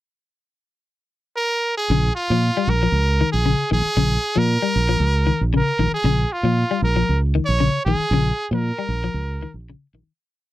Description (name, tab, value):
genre	afrobeat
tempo	116 BPM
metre	4/4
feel	straight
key	Bb dorian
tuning	A4 = 443 Hz
part	brilliant trumpet	melody	1.4-9.5 s	F4 to Db5	-22 LUFS	right 2 dB	none
part	electric guitar at the edge of break-up	arpeggios	1.9-10.1 s	Db3 to G3	-23 LUFS	left 6 dB	none
part	fingered electric bass	bass	1.9-10.1 s	Bb1 to Bb2	-20 LUFS	right 1 dB	none
room	light reverb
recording	dry, close 1970s-style studio recording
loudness	-17 LUFS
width	side -15 dB against mid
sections	0.0-1.9 pickup bar; 1.9-10.2 groove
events	fade-out 8.1-10.2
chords	0.0 N.C.; 1.9 Bbm7